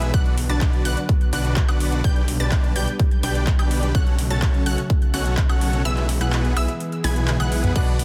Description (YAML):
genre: EDM, festival progressive house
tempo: 126 BPM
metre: 4/4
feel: straight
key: unclear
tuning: A4 = 440 Hz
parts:
  - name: lush unison pad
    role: sustained chords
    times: 0.0-8.0 s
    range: C#3 to B3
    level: -33 LUFS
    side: equal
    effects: chorus, sidechain pumping
  - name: unison pluck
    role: arpeggios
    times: 0.0-8.0 s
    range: E6 to A6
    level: -34 LUFS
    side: equal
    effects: sidechain pumping, tape echo
  - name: dense compressed supersaw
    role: riff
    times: 0.0-8.0 s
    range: B3 to A5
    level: -30 LUFS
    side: equal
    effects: sidechain pumping, tape echo
  - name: detuned saw bass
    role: bass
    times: 0.0-8.0 s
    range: B1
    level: -26 LUFS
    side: equal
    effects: sidechain pumping
  - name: big-room dance drum kit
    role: drums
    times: 0.0-8.0 s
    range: crash cymbal, handclaps, hi-hat, toms, woodblock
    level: -32 LUFS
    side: equal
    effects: overdrive
  - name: electronic kick drum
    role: drums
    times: 0.1-7.9 s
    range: none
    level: -22 LUFS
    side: equal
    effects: overdrive
  - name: bright baby grand piano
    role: accompaniment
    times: 7.8-7.9 s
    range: B2 to B4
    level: -31 LUFS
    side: equal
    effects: sidechain pumping, tape echo
room: little or no reverb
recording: dense, heavily limited modern master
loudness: -21 LUFS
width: mono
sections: 0.0-8.0 A section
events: kick drops out 5.9-7.8; drum fill 7.3-7.8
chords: 0.1 Bm; 2.0 G/B; 3.9 F#m/B; 5.9 E/B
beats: | 0.14 0.61 1.09 1.57 | 2.04 2.52 3.00 3.47 | 3.95 4.42 4.90 5.38 | 5.85 6.33 6.80 7.28 | 7.76